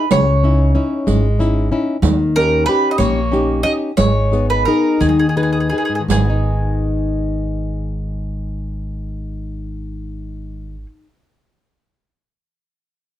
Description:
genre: italian folk, Italian serenade.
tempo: 53-63 BPM (dotted quarters).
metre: 6/8.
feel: rubato.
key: G# harmonic minor.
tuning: A4 = 440 Hz.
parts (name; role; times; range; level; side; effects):
mandolin; melody; 0.0-10.9 s; G#4 to D#5; -19 LUFS; right 2 dB; none.
flamenco guitar; accompaniment; 0.0-11.0 s; G#2 to D#5; -19 LUFS; left 3 dB; none.
upright bass; bass; 0.1-10.8 s; G#1 to D#2; -19 LUFS; equal; none.
riq; percussion; 0.1-6.5 s; none; -20 LUFS; right 6 dB; none.
room: light reverb.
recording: none.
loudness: -14 LUFS.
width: side -12 dB against mid.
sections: 0.0-6.1 A section; 6.1-10.6 B section.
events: slowing down 2.0-6.1.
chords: 0.1 C#madd9; 2.0 D#7; 4.0 G#m.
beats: | 0.11 1.07 | 2.02 2.98 | 3.96 5.00 | 6.09 7.22 | 8.34 9.45.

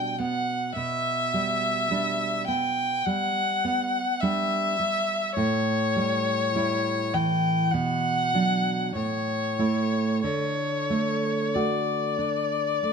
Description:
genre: romantic duo for violin and classical guitar.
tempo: 45-53 BPM.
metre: 4/4.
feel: rubato.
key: unclear.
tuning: A4 = 440 Hz.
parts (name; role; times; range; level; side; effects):
warm violin; melody; 0.0-12.9 s; C#5 to G5; -25 LUFS; left 3 dB; none.
nylon-string guitar; accompaniment; 0.0-12.9 s; A2 to F#4; -27 LUFS; right 4 dB; none.
room: moderate recital hall reverb, RT60 1.4 s.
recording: close, detailed microphones.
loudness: -23 LUFS.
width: side -6 dB against mid.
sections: 0.0-12.9 A section.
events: none.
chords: 0.0 G/B; 5.4 A7; 7.7 Bm; 9.0 A; 10.3 D.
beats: | 0.78 1.93 3.07 4.23 | 5.37 6.55 7.74 8.97 | 10.26 11.56 12.84.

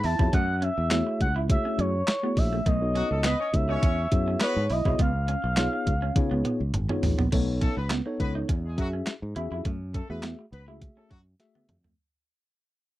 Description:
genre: early-eighties boogie funk.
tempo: 103 BPM.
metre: 4/4.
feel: straight.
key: F# dorian.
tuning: A4 = 441 Hz.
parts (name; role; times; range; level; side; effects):
expressive synth lead; melody; 0.0-6.7 s; C#5 to A5; -29 LUFS; equal; chorus, slapback echo.
electric guitar at the edge of break-up; riff; 0.0-11.9 s; A3 to E#4; -34 LUFS; right 3 dB; wide subtle chorus.
fingered electric bass; bass; 0.0-11.9 s; G#1 to C#3; -28 LUFS; equal; none.
crisp 8-bit digital drum machine; drums; 0.0-12.0 s; crash cymbal, handclaps, hi-hat, kick drum, snare drum, toms; -26 LUFS; equal; overdrive.
mellow tine electric piano; accompaniment; 0.2-11.8 s; A3 to E5; -31 LUFS; left 2 dB; slow stereo tremolo.
warm horn section; second line; 3.0-11.2 s; F#3 to C#5; -34 LUFS; left 2 dB; none.
room: little or no reverb.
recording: dry, close 1970s-style studio recording.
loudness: -24 LUFS.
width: side -16 dB against mid.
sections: 0.0-7.3 A section; 7.3-12.0 B section.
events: drum fill 6.2-7.3, 11.4-12.0; fade-out 7.3-12.0.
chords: 0.3 F#m9; 2.7 B9; 3.8 E69; 5.0 C#9; 7.3 B9; 8.5 E69; 9.7 F#m9.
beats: | 0.33 0.91 1.50 2.08 | 2.66 3.24 3.83 4.41 | 4.99 5.57 6.16 6.74 | 7.32 7.90 8.49 9.07 | 9.65 10.23 10.82 11.40.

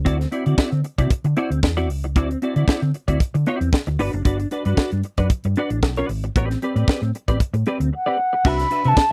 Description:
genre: disco.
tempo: 114 BPM.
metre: 4/4.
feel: straight.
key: unclear.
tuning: A4 = 440 Hz.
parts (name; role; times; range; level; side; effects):
hollow-body short-scale fingered electric bass; bass; 0.0-9.0 s; F#1 to D3; -24 LUFS; equal; none.
clean electric guitar; accompaniment; 0.1-9.0 s; C4 to E5; -26 LUFS; equal; ensemble chorus.
tight funk drum kit; drums; 0.1-9.1 s; crash cymbal, hi-hat, kick drum, snare drum; -21 LUFS; equal; none.
mellow alto flute; melody; 8.0-9.1 s; F#5 to B5; -21 LUFS; equal; none.
room: light reverb.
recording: dry, close 1970s-style studio recording.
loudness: -21 LUFS.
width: mono.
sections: 0.0-8.4 A section.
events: none.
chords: 0.1 D9; 4.0 Gmaj7; 6.4 Am11; 8.4 Cmaj9#11.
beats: | 0.06 0.58 1.11 1.63 | 2.16 2.68 3.21 3.73 | 4.26 4.78 5.31 5.83 | 6.36 6.88 7.40 7.93 | 8.45 8.97.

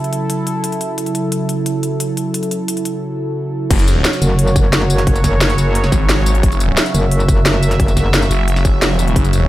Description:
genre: dark technical drum and bass.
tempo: 176 BPM.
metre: 4/4.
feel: straight.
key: F# minor.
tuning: A4 = 439 Hz.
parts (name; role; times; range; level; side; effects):
sweeping resonant pad; sustained chords; 0.0-9.5 s; C#3 to E5; -19 LUFS; right 1 dB; chorus, sidechain pumping.
drum and bass drum kit; drums; 0.0-9.4 s; crash cymbal, hi-hat, snare drum, tambourine; -20 LUFS; left 1 dB; studio reverb.
phased detuned saw bass; bass; 3.7-9.5 s; F#1 to G#1; -15 LUFS; equal; phaser, tube saturation, sidechain pumping.
electronic kick drum; drums; 3.7-9.2 s; none; -16 LUFS; equal; overdrive, studio reverb.
metallic wobble bass; bass; 4.2-8.3 s; F#1; -14 LUFS; equal; chorus.
room: little or no reverb.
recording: none.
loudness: -13 LUFS.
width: side -15 dB against mid.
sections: 0.0-3.7 A section; 3.7-9.5 B section.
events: filter sweep on analog synth pad 0.0-3.7; drop 3.7-9.5.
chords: 0.0 F#5.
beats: 0.30 0.64 | 0.98 1.32 1.66 2.00 | 2.34 2.68 3.02 3.37 | 3.71 4.05 4.39 4.73 | 5.07 5.41 5.75 6.09 | 6.43 6.77 7.12 7.46 | 7.80 8.14 8.48 8.82 | 9.16.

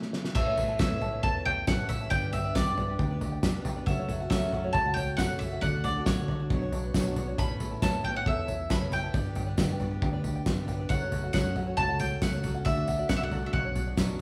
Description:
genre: indie folk with a building arrangement.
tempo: 136 BPM.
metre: 4/4.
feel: straight.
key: unclear.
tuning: A4 = 440 Hz.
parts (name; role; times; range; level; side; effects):
cloth-damped thuddy drum kit; drums; 0.0-14.1 s; crash cymbal, kick drum, snare drum, toms; -32 LUFS; equal; none.
bowl-back mandolin; melody; 0.3-13.9 s; C#5 to B5; -34 LUFS; equal; none.
dark upright piano; accompaniment; 0.3-14.2 s; F#1 to E5; -44 LUFS; equal; none.
picked acoustic archtop guitar; accompaniment; 0.3-14.2 s; A2 to C#5; -42 LUFS; equal; none.
open-back banjo; arpeggios; 0.4-14.2 s; D4 to A5; -42 LUFS; equal; none.
fingered electric bass; bass; 0.4-14.2 s; F1 to D3; -36 LUFS; equal; none.
tambourine; percussion; 0.4-14.1 s; none; -51 LUFS; equal; none.
room: wet large studio reverb, RT60 1.2 s.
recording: band playing live in one room, small room ambience.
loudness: -29 LUFS.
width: mono.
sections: 0.4-14.2 A section.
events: break 0.0-0.4; drum fill 0.0-0.4.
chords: 0.4 Aadd9; 2.1 G; 3.9 F#m; 5.6 D; 6.5 Bmadd9; 7.4 Aadd9; 9.1 G; 10.9 F#m; 12.7 D; 13.5 Bmadd9.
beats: | 0.35 0.79 1.23 1.67 | 2.11 2.55 2.99 3.43 | 3.87 4.31 4.75 5.19 | 5.62 6.06 6.50 6.94 | 7.38 7.82 8.26 8.70 | 9.14 9.58 10.02 10.46 | 10.90 11.34 11.78 12.22 | 12.66 13.10 13.54 13.98.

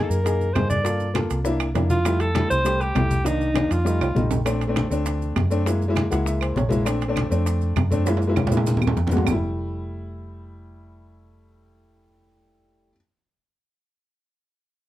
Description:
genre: Afro-Cuban jazz.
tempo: 200 BPM.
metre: 4/4.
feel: straight.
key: F major.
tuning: A4 = 440 Hz.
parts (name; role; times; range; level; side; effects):
breathy alto saxophone; melody; 0.0-4.3 s; Eb4 to D5; -24 LUFS; right 1 dB; plate reverb.
warm upright piano; accompaniment; 0.0-13.0 s; Eb3 to Gb5; -25 LUFS; left 2 dB; none.
hollow-body short-scale fingered electric bass; bass; 0.0-12.9 s; F1 to Bb2; -24 LUFS; right 1 dB; none.
congas; percussion; 0.1-9.3 s; none; -28 LUFS; left 2 dB; none.
maracas; percussion; 0.1-9.3 s; none; -41 LUFS; right 7 dB; none.
bongos; percussion; 0.3-9.3 s; none; -32 LUFS; left 4 dB; none.
timbales; percussion; 0.3-9.3 s; none; -30 LUFS; right 7 dB; none.
claves; percussion; 0.6-9.3 s; none; -36 LUFS; right 10 dB; none.
room: light reverb.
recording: dark, warm production.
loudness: -20 LUFS.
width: side -14 dB against mid.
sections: 0.0-4.5 A section; 4.5-9.3 B section; 9.3-11.7 C section.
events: drum fill 4.0-4.5, 8.1-9.3; upright piano fill 6.0-6.9.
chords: 0.0 Gb69; 0.9 Gm9; 1.5 C9; 2.1 Fmaj9; 3.3 Cm7; 3.9 F7; 4.5 Bbmaj7; 5.7 Gb7; 6.9 Bbmaj7; 8.1 Gb7; 9.3 Fmaj9.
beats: 0.25 0.55 | 0.85 1.15 1.46 1.75 | 2.06 2.36 2.66 2.96 | 3.26 3.56 3.86 4.16 | 4.46 4.76 5.06 5.36 | 5.66 5.96 6.26 6.56 | 6.87 7.17 7.46 7.77 | 8.07 8.37 8.67 8.97 | 9.27 9.57 9.87 10.17 | 10.47 10.77 11.07 11.37.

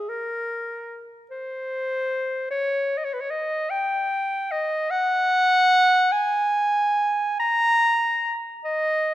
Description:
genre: classical, free, expressive piece for unaccompanied clarinet.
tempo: 49 BPM (dotted quarters).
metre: 6/8.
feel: rubato.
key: unclear.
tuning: A4 = 440 Hz.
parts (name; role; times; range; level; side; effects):
warm clarinet; solo; 0.0-9.1 s; G#4 to A#5; -20 LUFS; equal; none.
room: moderate scoring stage reverb, RT60 1.8 s.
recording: none.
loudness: -20 LUFS.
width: side -14 dB against mid.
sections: 0.0-9.1 A section.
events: none.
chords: none.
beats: | 0.10 1.32 | 2.51 3.72 | 4.92 6.12 | 7.38 8.63.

